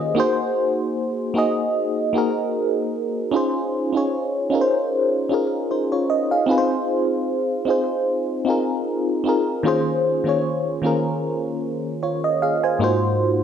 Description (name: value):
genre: R&B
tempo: 76 BPM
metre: 4/4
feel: swing 54% on 16ths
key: Db major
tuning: A4 = 440 Hz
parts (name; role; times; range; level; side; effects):
- FM electric piano with auto-pan; solo; 0.0-13.4 s; Ab2 to Ab5; -19 LUFS; equal; phaser, slapback echo
room: moderate echo chamber reverb, RT60 2.1 s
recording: none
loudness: -19 LUFS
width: side -8 dB against mid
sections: 0.0-3.3 A section; 3.3-13.4 B section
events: none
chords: 0.2 Ab7; 3.3 Dbmaj9; 6.5 Fm7; 9.6 Eb13sus4; 12.8 Ab13